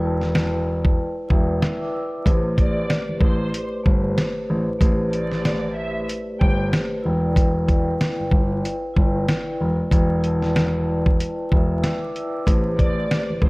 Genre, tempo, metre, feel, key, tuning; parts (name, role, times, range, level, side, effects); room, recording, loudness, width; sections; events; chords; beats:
hip hop, boom-bap hip-hop; 94 BPM; 4/4; swing 58% on 16ths; A minor; A4 = 442 Hz
vibraphone with soft mallets; accompaniment; 0.0-13.5 s; A3 to E6; -25 LUFS; equal; cassette tape, high-pass filter, low-pass filter
dark baby grand piano; bass; 0.0-13.5 s; E1 to A1; -23 LUFS; equal; transformer saturation
dusty soul sampler-style drum kit; drums; 0.2-13.5 s; hi-hat, kick drum, snare drum; -20 LUFS; equal
warm studio violin section; melody; 2.6-6.6, 12.8-13.5 s; C5 to G5; -30 LUFS; equal; high-pass filter, low-pass filter, slapback echo
light reverb, small room ambience; worn, warbling old tape, cassette tape, vinyl crackle, warbly pitch drift; -18 LUFS; side -25 dB against mid
0.0-13.5 A section
break 0.0-2.3
0.0 Em7; 2.3 Am9; 7.0 Em7; 12.5 Am9
0.34 0.98 1.62 | 2.26 2.90 3.53 4.17 | 4.81 5.45 6.09 6.72 | 7.36 8.00 8.64 9.28 | 9.92 10.55 11.19 11.83 | 12.47 13.11